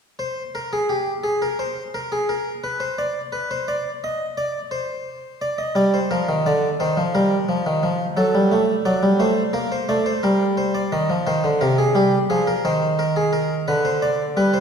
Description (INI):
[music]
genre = classical, baroque-style two-part invention for harpsichord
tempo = 87 BPM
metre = 4/4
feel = straight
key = C minor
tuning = A4 = 440 Hz
[part]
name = harpsichord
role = solo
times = 0.2-14.6 s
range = C3 to Eb5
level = -19 LUFS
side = equal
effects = none
[sound]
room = wet scoring stage reverb, RT60 1.7 s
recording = heard from further back in the room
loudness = -19 LUFS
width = side -6 dB against mid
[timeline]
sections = 0.0-14.6 A section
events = none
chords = 0.0 N.C.; 5.4 Gm; 6.8 Cm/Eb; 8.2 D7/F#; 9.5 Gm; 10.9 Cm; 12.3 Fm; 13.7 G/D